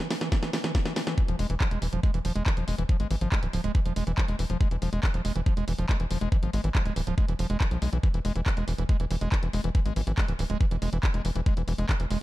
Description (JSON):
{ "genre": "psychedelic trance", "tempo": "140 BPM", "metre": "4/4", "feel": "straight", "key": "unclear", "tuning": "A4 = 440 Hz", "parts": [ { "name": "overdriven acid bass", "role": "riff", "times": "0.0-12.2 s", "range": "E3 to G#3", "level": "-33 LUFS", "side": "moving between left 6 dB and right 7 dB", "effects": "distortion, auto-pan, sidechain pumping, tape echo" }, { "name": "drum and bass drum kit", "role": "drums", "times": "0.0-12.2 s", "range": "handclaps, hi-hat, snare drum", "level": "-34 LUFS", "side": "equal", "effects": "small room ambience" }, { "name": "electronic kick drum", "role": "drums", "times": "0.3-12.0 s", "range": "none", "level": "-24 LUFS", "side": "equal", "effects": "small room ambience" }, { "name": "tight sequencer bass", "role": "bass", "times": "1.3-12.2 s", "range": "D1 to B1", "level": "-28 LUFS", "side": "equal", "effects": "none" } ], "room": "little or no reverb", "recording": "dark, warm production", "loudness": "-24 LUFS", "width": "side -17 dB against mid", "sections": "0.0-1.2 A section; 1.2-12.2 B section", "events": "build-up 0.0-1.2; drum fill 0.0-1.2; drop 1.2-12.2", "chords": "0.0 E5" }